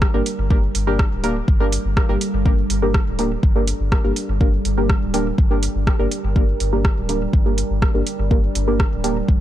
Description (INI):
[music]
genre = dub techno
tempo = 123 BPM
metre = 4/4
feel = straight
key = G minor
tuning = A4 = 440 Hz
[part]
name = deep dark ambient pad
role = sustained chords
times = 0.0-9.4 s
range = G3 to C5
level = -27 LUFS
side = right 3 dB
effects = chorus, built-in reverb, sidechain pumping
[part]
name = soft dub sub bass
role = bass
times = 0.0-9.4 s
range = D1 to G1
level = -22 LUFS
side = equal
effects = sidechain pumping
[part]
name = electronic kick drum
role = drums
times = 0.0-9.4 s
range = none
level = -17 LUFS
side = equal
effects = none
[part]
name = soft vintage rhythm box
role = drums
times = 0.0-9.1 s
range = hi-hat, rim click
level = -28 LUFS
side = right 2 dB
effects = none
[part]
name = deep mellow chord stab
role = stabs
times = 0.1-9.2 s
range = Bb3 to Bb4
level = -24 LUFS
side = equal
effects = chorus, phaser, sidechain pumping, dub echo
[sound]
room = little or no reverb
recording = dark, warm production, faint mains hum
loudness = -16 LUFS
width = side -12 dB against mid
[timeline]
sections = 0.0-9.4 A section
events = none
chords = 0.0 Gm